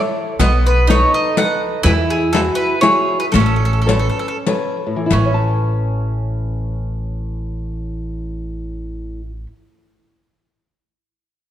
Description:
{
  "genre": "italian folk, Italian serenade",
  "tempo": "91-125 BPM",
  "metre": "3/4",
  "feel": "straight",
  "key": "A major",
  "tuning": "A4 = 441 Hz",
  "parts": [
    { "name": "bowl-back mandolin", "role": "second line", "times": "0.0-9.5 s", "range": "B3 to E4", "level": "-24 LUFS", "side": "right 5 dB", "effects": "none" },
    { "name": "flamenco guitar", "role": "accompaniment", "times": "0.0-9.7 s", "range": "A2 to A5", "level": "-22 LUFS", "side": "left 2 dB", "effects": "none" },
    { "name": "bowl-back mandolin", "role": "melody", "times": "0.4-4.4 s", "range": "G#4 to F#5", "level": "-19 LUFS", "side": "equal", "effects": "none" },
    { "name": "upright bass", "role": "bass", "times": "0.4-9.4 s", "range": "A1 to E2", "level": "-18 LUFS", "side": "equal", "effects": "none" },
    { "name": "riq", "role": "percussion", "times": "0.4-5.4 s", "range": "none", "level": "-22 LUFS", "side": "left 4 dB", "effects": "none" }
  ],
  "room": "moderate scoring stage reverb, RT60 2.0 s",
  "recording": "dark, warm production",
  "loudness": "-15 LUFS",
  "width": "side -11 dB against mid",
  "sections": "0.0-5.1 A section; 5.1-9.0 B section",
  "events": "slowing down 1.8-5.1",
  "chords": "0.4 B7; 1.8 Eadd9; 3.3 Aadd9"
}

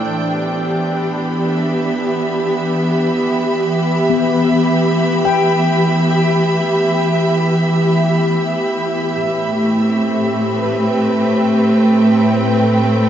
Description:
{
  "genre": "ambient",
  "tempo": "53 BPM",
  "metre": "4/4",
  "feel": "straight",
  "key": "unclear",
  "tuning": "A4 = 441 Hz",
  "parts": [
    { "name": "rich symphonic string section", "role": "sustained chords", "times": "0.0-13.1 s", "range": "A2 to B5", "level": "-14 LUFS", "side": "equal", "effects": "none" },
    { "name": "analog drone", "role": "drone", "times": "0.0-13.1 s", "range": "A3 to E4", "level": "-33 LUFS", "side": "equal", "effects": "none" },
    { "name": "handpan", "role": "arpeggios", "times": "4.1-7.8 s", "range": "B3 to G5", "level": "-22 LUFS", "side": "left 7 dB", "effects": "diffuse ambient delay" }
  ],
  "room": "wet shimmer reverb, RT60 8.3 s",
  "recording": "nothing above 7.8 kHz",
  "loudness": "-13 LUFS",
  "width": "side -10 dB against mid",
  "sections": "0.1-13.1 A section",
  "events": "none",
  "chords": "0.1 Em; 9.2 Am7"
}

